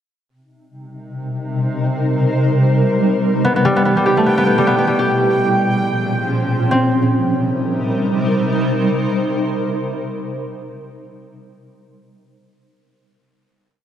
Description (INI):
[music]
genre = IDM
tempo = free time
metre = none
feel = none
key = C phrygian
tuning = A4 = 439 Hz
[part]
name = granular cloud pad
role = sustained chords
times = 1.1-10.7 s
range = Bb2 to D5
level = -17 LUFS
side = equal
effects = built-in reverb
[part]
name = concert harp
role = arpeggios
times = 3.4-9.7 s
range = G3 to G4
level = -17 LUFS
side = equal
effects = digital delay
[part]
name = bubbling stepped-filter texture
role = texture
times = 3.9-6.7 s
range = G5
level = -24 LUFS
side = right 1 dB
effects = chorus, built-in reverb
[sound]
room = moderate lush hall reverb, RT60 2.6 s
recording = none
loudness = -15 LUFS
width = side -10 dB against mid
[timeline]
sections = 0.2-6.7 groove; 6.7-10.0 final chord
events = none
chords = 0.2 Cm7; 3.4 G69/B; 5.1 Bbm7; 6.7 Cm7